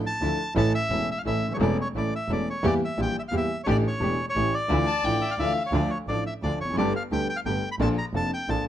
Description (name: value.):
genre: tango.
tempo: 174 BPM.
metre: 3/4.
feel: rubato.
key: D harmonic minor.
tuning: A4 = 440 Hz.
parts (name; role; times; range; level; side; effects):
clear upright piano; accompaniment; 0.0-8.6 s; C#1 to A4; -27 LUFS; left 1 dB; none.
bandoneon; melody; 0.1-8.7 s; C#5 to B5; -29 LUFS; equal; none.
muted studio string section; stabs; 0.2-8.6 s; F3 to A4; -37 LUFS; left 1 dB; none.
clear double bass; bass; 0.2-8.7 s; E1 to E2; -29 LUFS; right 2 dB; none.
warm violin; second line; 4.9-5.7 s; F5 to A5; -29 LUFS; left 4 dB; slapback echo.
room: light reverb.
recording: close, detailed microphones.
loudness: -23 LUFS.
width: side -11 dB against mid.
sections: 0.0-5.7 A section; 5.7-8.7 B section.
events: none.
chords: 0.0 Dmadd9; 0.6 A; 2.6 Edim; 3.7 A7sus4; 4.4 A7; 4.7 Dmadd9; 5.7 Dm; 6.8 Gadd9; 7.8 Bbmaj7.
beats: 0.22 | 0.56 0.91 1.26 | 1.60 1.95 2.29 | 2.64 2.98 3.33 | 3.67 4.01 4.35 | 4.70 5.04 5.38 | 5.73 6.08 6.42 | 6.77 7.11 7.45 | 7.79 8.14 8.48.